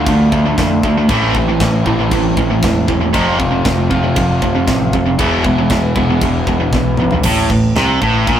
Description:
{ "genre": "heavy metal", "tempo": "117 BPM", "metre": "4/4", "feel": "straight", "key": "A harmonic minor", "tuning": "A4 = 444 Hz", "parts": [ { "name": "distorted electric guitar", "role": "riff", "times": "0.0-8.4 s", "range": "E2 to A3", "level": "-18 LUFS", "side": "left 3 dB", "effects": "overdrive" }, { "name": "distorted electric guitar", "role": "riff", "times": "0.0-8.4 s", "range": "E2 to A3", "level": "-18 LUFS", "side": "right 4 dB", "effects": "overdrive" }, { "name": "overdriven semi-hollow guitar", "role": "riff", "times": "0.0-8.4 s", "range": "A2 to F4", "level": "-19 LUFS", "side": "equal", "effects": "none" }, { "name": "growling picked electric bass", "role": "bass", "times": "0.0-8.4 s", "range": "E1 to F2", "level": "-18 LUFS", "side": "equal", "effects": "overdrive" }, { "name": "tight metal drum kit", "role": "drums", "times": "0.1-8.4 s", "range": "crash cymbal, kick drum, snare drum, toms", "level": "-20 LUFS", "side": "equal", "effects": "none" } ], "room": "moderate small room reverb, RT60 0.5 s", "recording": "rough rehearsal-room recording", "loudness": "-12 LUFS", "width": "side -10 dB against mid", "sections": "0.0-7.2 A section; 7.2-8.4 B section", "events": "drum fill 6.7-7.2", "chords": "0.0 Dm; 1.1 Am; 3.1 F; 5.2 E; 7.2 Am" }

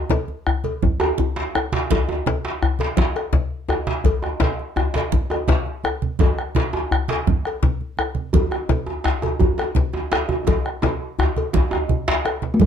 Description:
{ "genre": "west african traditional, West African drum ensemble", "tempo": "112 BPM (dotted quarters)", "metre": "12/8", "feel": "straight", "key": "unclear", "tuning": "A4 = 442 Hz", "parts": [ { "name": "congas", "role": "percussion", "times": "0.1-12.7 s", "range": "none", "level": "-23 LUFS", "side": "right 6 dB", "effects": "none" }, { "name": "cowbell", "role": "percussion", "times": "0.1-12.7 s", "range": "none", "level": "-28 LUFS", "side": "left 6 dB", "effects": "none" }, { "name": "djembe", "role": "percussion", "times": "0.1-12.7 s", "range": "none", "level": "-24 LUFS", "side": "left 4 dB", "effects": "none" }, { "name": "bombo", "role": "percussion", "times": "0.5-12.7 s", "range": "none", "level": "-23 LUFS", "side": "left 1 dB", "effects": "none" }, { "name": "djembe", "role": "percussion", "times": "1.0-12.2 s", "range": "none", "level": "-24 LUFS", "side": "right 2 dB", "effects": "none" }, { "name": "talking drum", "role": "melody", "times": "12.5-12.7 s", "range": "G3 to A3", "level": "-14 LUFS", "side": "equal", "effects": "none" } ], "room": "light reverb", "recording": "dark, warm production", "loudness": "-19 LUFS", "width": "side -8 dB against mid", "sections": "0.0-12.6 A section", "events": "drum fill 10.5-12.6", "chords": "none" }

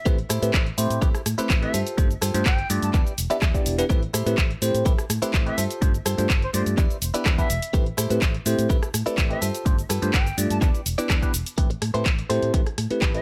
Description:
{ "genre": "filtered disco house", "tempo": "125 BPM", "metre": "4/4", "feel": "straight", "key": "A minor", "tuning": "A4 = 440 Hz", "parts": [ { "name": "jazz flute", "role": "melody", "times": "0.0-13.2 s", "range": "C5 to A5", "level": "-35 LUFS", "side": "equal", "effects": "vintage 12-bit sampler grit, sidechain pumping, low-pass filter, digital delay" }, { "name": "bell-like tine electric piano", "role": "accompaniment", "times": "0.1-13.2 s", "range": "A3 to E5", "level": "-29 LUFS", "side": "equal", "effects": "phaser, vintage 12-bit sampler grit, sidechain pumping, low-pass filter" }, { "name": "direct-recorded clean electric guitar", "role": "riff", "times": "0.1-13.2 s", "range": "E4 to D5", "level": "-33 LUFS", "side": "equal", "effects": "sidechain pumping, low-pass filter" }, { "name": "fingered electric bass", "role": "bass", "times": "0.1-13.2 s", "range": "E1 to A2", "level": "-30 LUFS", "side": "equal", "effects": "sidechain pumping, low-pass filter" }, { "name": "electronic kick drum", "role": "drums", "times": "0.1-13.1 s", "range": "none", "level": "-24 LUFS", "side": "equal", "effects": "none" }, { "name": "punchy analog drum machine", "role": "drums", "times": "0.1-13.2 s", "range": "cabasa, handclaps, hi-hat, rim click", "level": "-30 LUFS", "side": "equal", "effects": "sidechain pumping on hats, sidechain pumping on perc" } ], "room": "little or no reverb", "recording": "none", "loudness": "-23 LUFS", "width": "mono", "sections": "0.0-11.6 A section; 11.6-13.2 B section", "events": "drop 0.0-11.6", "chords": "0.1 Am7; 1.7 G9sus4; 2.9 Em7; 3.9 Am7; 5.6 G9sus4; 6.8 Em7; 7.7 Am7; 9.4 G9sus4; 10.6 Em7; 11.6 Am7" }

